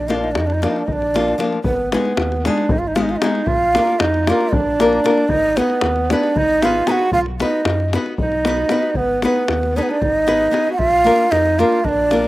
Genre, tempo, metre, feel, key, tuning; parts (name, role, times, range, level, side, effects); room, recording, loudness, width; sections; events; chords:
balkan folk, Balkan wedding band; 230 BPM (eighths); 7/8; straight; A4 = 440 Hz
breathy mellow ney; melody; 0.0-12.3 s; Cb5 to Bb5; -19 LUFS; right 1 dB; slapback echo
mellow clarinet; second line; 0.0-12.3 s; Cb4 to Gb4; -22 LUFS; right 3 dB; slapback echo
pure sine sub bass; bass; 0.0-12.3 s; Ab1 to F#2; -25 LUFS; equal
nylon-string guitar; accompaniment; 0.1-12.3 s; F3 to Cb5; -20 LUFS; left 3 dB; slapback echo
davul; percussion; 0.1-12.3 s; -23 LUFS; left 2 dB
little or no reverb; recorded outdoors, with no room sound; -15 LUFS; side -17 dB against mid
0.0-1.6 A section; 1.6-12.3 B section
0.0 Bb; 1.6 Abm; 3.5 Bb; 5.3 Abm; 7.1 B; 9.0 Abm; 10.8 Bb